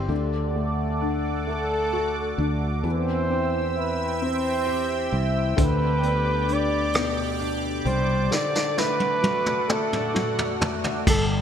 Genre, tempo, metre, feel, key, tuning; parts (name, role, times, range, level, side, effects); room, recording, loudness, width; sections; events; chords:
six-eight pop ballad; 44 BPM (dotted quarters); 6/8; straight; A4 = 440 Hz
clear concert grand piano; accompaniment; 0.0-11.4 s; B2 to G4; -28 LUFS; left 4 dB; analog chorus
sweeping resonant pad; sustained chords; 0.0-11.4 s; C4 to E6; -31 LUFS; right 2 dB; chorus
fretless electric bass; bass; 0.0-11.4 s; G1 to E2; -27 LUFS; right 1 dB
mellow flugelhorn; melody; 1.5-11.3 s; A4 to D5; -26 LUFS; right 1 dB; digital delay
vintage brush drum kit; drums; 5.6-11.3 s; crash cymbal, hi-hat, kick drum, rim click, snare drum, toms; -25 LUFS; equal; gated reverb
moderate plate reverb, RT60 3.3 s; bright 1980s-style digital production; -22 LUFS; side -8 dB against mid
0.1-11.1 A section
drum fill 8.3-11.1
0.1 D; 2.9 C/E; 5.6 G/D; 8.3 D